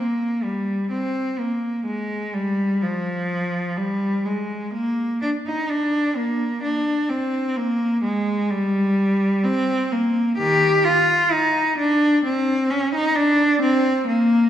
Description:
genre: classical, baroque-style suite movement for unaccompanied cello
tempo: 64 BPM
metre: 3/4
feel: rubato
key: C minor from 10.4 s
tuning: A4 = 442 Hz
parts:
  - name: clear cello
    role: solo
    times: 0.0-14.5 s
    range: Eb3 to G4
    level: -19 LUFS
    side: equal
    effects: none
room: wet scoring stage reverb, RT60 1.6 s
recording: recorded in a church or concert hall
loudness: -19 LUFS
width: side -10 dB against mid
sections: 0.0-14.5 A section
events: none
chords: none

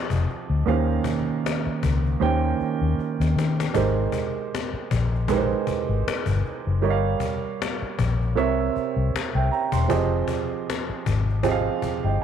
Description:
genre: R&B, neo-soul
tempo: 78 BPM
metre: 4/4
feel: swing 55% on 16ths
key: Ab major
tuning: A4 = 440 Hz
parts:
  - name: dark upright piano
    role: accompaniment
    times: 0.0-12.2 s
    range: C3 to C6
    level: -25 LUFS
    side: right 8 dB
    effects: none
  - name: vintage muted fingered electric bass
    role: bass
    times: 0.1-12.2 s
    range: E1 to Eb3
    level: -23 LUFS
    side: left 2 dB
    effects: none
  - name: cajon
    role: drums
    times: 0.1-12.0 s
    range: none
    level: -30 LUFS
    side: left 9 dB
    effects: none
room: moderate spring reverb, RT60 2.5 s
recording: 1960s-style stereo with parts hard left and right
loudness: -21 LUFS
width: side -8 dB against mid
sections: 0.0-3.7 A section; 3.7-12.2 A section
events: drum fill 3.0-3.7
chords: 0.0 Fm9; 0.7 Eb13; 3.7 Abmaj9; 6.8 Gm7b5; 8.4 C7b9; 9.9 Fm9

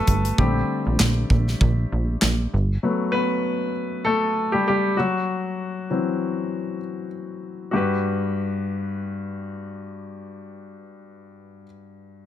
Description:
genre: piano-driven pop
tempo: 98 BPM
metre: 4/4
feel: swing 56% on 16ths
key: G major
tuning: A4 = 441 Hz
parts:
  - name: clear baby grand piano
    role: accompaniment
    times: 0.0-12.3 s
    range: G2 to B4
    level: -24 LUFS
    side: left 2 dB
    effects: plate reverb
  - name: plucky analog bass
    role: bass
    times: 0.1-2.8 s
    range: G1 to Bb1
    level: -21 LUFS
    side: right 1 dB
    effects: none
  - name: modern studio drum kit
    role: drums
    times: 0.1-2.4 s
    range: handclaps, hi-hat, kick drum, snare drum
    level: -21 LUFS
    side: right 1 dB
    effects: none
room: moderate studio reverb, RT60 0.7 s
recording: none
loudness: -21 LUFS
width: side -11 dB against mid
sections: 0.0-7.7 A section; 7.7-10.2 B section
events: grand piano solo 0.0-7.7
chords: 0.4 Bbmaj7; 2.5 Gmaj7; 5.0 Esus2; 7.7 Gmaj7

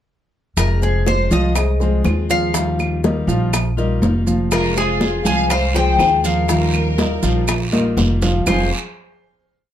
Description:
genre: latin, Cuban son and guajira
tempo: 122 BPM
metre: 4/4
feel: straight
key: F minor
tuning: A4 = 441 Hz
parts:
  - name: Cuban tres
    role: melody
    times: 0.6-8.7 s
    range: Ab4 to Ab5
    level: -21 LUFS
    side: left 2 dB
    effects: plate reverb
  - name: fingerpicked steel-string acoustic guitar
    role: accompaniment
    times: 0.6-8.7 s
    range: F2 to F4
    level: -24 LUFS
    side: left 5 dB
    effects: none
  - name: upright bass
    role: bass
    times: 0.6-8.7 s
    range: F1 to Eb2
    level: -19 LUFS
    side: equal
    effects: none
  - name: bongos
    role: percussion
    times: 0.6-8.6 s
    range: none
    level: -26 LUFS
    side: left 4 dB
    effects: none
  - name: claves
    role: percussion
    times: 0.6-8.6 s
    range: none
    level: -28 LUFS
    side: right 3 dB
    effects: none
  - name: congas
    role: percussion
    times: 0.6-8.6 s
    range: none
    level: -23 LUFS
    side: equal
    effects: none
  - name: maracas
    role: percussion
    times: 0.6-8.6 s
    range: none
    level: -29 LUFS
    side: right 6 dB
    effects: none
  - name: dark concert grand piano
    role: arpeggios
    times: 0.8-8.7 s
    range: F3 to F5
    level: -22 LUFS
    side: right 2 dB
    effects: none
  - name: dark studio violin section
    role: second line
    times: 4.5-8.7 s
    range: F4 to F5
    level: -26 LUFS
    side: right 1 dB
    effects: none
  - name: guiro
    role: percussion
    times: 4.5-8.6 s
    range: none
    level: -30 LUFS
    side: right 5 dB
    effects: none
room: light reverb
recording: close, detailed microphones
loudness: -15 LUFS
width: side -10 dB against mid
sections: 0.6-8.5 montuno (vamp); 8.5-9.7 final chord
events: drum fill 7.7-8.5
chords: 0.6 Fm; 2.5 Ebadd9; 4.5 Fm; 6.5 Ebadd9; 8.5 Fm

